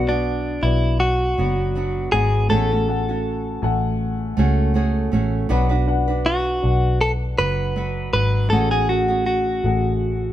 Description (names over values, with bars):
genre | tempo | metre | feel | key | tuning
pop | 80 BPM | 4/4 | swing 55% on 16ths | unclear | A4 = 439 Hz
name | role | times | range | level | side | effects
direct-recorded clean electric guitar | melody | 0.0-10.3 s | D4 to B4 | -22 LUFS | equal | none
dark upright piano | accompaniment | 0.0-10.3 s | A3 to G#5 | -28 LUFS | left 5 dB | none
nylon-string guitar | accompaniment | 0.0-10.3 s | B2 to B4 | -25 LUFS | right 5 dB | none
vintage muted fingered electric bass | bass | 0.0-10.3 s | F#1 to C#2 | -21 LUFS | equal | none
room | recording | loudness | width
moderate stone room reverb, RT60 1.2 s | band playing live in one room | -18 LUFS | side -12 dB against mid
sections
0.0-10.3 A section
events
none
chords
0.0 Bm; 2.5 F#madd9/A; 5.5 Bm; 8.5 F#madd9/A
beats
0.25 1.00 1.75 | 2.50 3.25 4.00 4.75 | 5.50 6.26 7.01 7.76 | 8.51 9.26 10.02